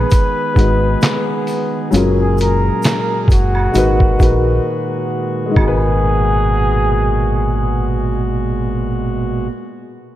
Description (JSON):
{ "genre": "lo-fi hip hop", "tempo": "66 BPM", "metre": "4/4", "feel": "swing 57% on 16ths", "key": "G# minor", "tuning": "A4 = 440 Hz", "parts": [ { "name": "trumpet with bucket mute", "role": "melody", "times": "0.0-8.3 s", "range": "F#4 to B4", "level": "-21 LUFS", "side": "equal", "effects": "low-pass filter, analog delay" }, { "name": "dark upright piano", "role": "accompaniment", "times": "0.0-10.2 s", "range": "F#3 to B4", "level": "-20 LUFS", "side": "left 2 dB", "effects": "low-pass filter" }, { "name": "pipe organ, principal", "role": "sustained chords", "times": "0.0-9.5 s", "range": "A#2 to G#4", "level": "-21 LUFS", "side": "right 1 dB", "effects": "low-pass filter" }, { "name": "deep dub fingered electric bass", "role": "bass", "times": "0.0-9.5 s", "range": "F#1 to A#1", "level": "-18 LUFS", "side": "equal", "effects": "none" }, { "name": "lo-fi sampler-style drum kit", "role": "drums", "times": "0.1-5.8 s", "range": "handclaps, hi-hat, kick drum, snare drum", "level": "-14 LUFS", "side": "equal", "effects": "vintage 12-bit sampler grit" }, { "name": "egg shaker and woodblock", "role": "percussion", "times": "0.1-6.0 s", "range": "none", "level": "-32 LUFS", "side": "right 3 dB", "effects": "none" } ], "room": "moderate plate reverb, RT60 2.7 s", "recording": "dreamy mix soaked in reverb", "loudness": "-13 LUFS", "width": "side -13 dB against mid", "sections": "0.0-5.6 A section; 5.6-9.2 B section", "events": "break 4.7-5.6", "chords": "0.0 G#m7; 1.9 F#maj9; 3.7 G#m9" }